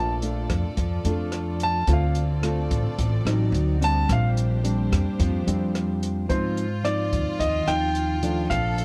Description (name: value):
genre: bossa nova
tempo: 109 BPM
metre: 4/4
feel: straight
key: unclear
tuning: A4 = 440 Hz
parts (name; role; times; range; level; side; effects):
- warm baby grand piano; melody; 0.0-8.8 s; C5 to A5; -29 LUFS; equal; none
- nylon-string guitar; accompaniment; 0.0-8.8 s; Ab2 to F4; -30 LUFS; equal; none
- dark chamber string section; sustained chords; 0.0-6.3 s; Bb3 to D5; -39 LUFS; equal; none
- upright bass; bass; 0.0-8.8 s; A1 to Ab2; -27 LUFS; equal; none
- open jazz drum kit; drums; 0.2-8.8 s; hi-hat, kick drum, rim click; -32 LUFS; equal; none
- warm chamber violin section; second line; 6.3-8.8 s; F4 to A4; -37 LUFS; equal; none
room: little or no reverb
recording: close, detailed microphones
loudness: -24 LUFS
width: mono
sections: 0.0-6.3 A section; 6.3-8.8 B section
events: grand piano solo 0.0-6.3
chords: 0.0 Bbmaj7; 1.9 Dm7; 3.5 D7b9; 4.1 Bb69; 6.3 Ab6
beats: 0.22 0.77 1.32 | 1.88 2.43 2.98 3.53 | 4.08 4.64 5.19 5.74 | 6.29 6.84 7.40 7.95 | 8.50